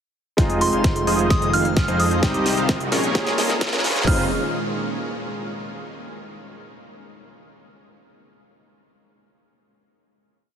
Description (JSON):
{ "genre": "EDM, festival progressive house", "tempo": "130 BPM", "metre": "4/4", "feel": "straight", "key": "F minor", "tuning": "A4 = 440 Hz", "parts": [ { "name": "felt-muted upright piano", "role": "accompaniment", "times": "0.4-4.3 s", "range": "G3 to Ab4", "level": "-29 LUFS", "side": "right 1 dB", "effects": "none" }, { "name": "lush unison pad", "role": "sustained chords", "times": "0.4-4.3 s", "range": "Bb2 to F4", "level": "-28 LUFS", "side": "right 2 dB", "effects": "chorus, sidechain pumping" }, { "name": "dense compressed supersaw", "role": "riff", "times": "0.4-4.2 s", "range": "C4 to F5", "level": "-26 LUFS", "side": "equal", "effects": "vintage 12-bit sampler grit, sidechain pumping, low-pass filter, ping-pong delay" }, { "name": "wide detuned saw bass", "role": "bass", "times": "0.4-4.3 s", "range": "F1 to F2", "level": "-26 LUFS", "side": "equal", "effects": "chorus, sidechain pumping" }, { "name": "big-room dance drum kit", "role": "drums", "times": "0.4-4.2 s", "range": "hi-hat, kick drum", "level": "-21 LUFS", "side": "equal", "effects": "none" }, { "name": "big-room dance drum kit", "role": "drums", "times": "0.4-4.1 s", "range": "hi-hat, snare drum", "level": "-28 LUFS", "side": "equal", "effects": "high-pass filter on snare, high-pass filter on hats" }, { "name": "riser", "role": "sound effects", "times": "1.8-4.1 s", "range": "none", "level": "-33 LUFS", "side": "equal", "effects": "none" }, { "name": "soft synth bell", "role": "melody", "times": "0.6-4.3 s", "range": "C6 to F6", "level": "-27 LUFS", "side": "equal", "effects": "chorus, ping-pong delay" } ], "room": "light reverb, digital ambience", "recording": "heavily compressed radio sound, high-pass filter", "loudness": "-18 LUFS", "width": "side -8 dB against mid", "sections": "0.4-4.1 build; 4.1-5.9 final chord", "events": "build-up 0.4-4.1; drum fill 0.4-4.1; filter sweep on supersaw synth 0.4-4.1; filter sweep 0.4-4.1", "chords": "0.4 Fm7; 2.2 Cm; 3.1 Bbm7; 4.1 Fm7", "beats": "| 0.38 0.84 1.30 1.77 | 2.23 2.69 3.15 3.61 | 4.07" }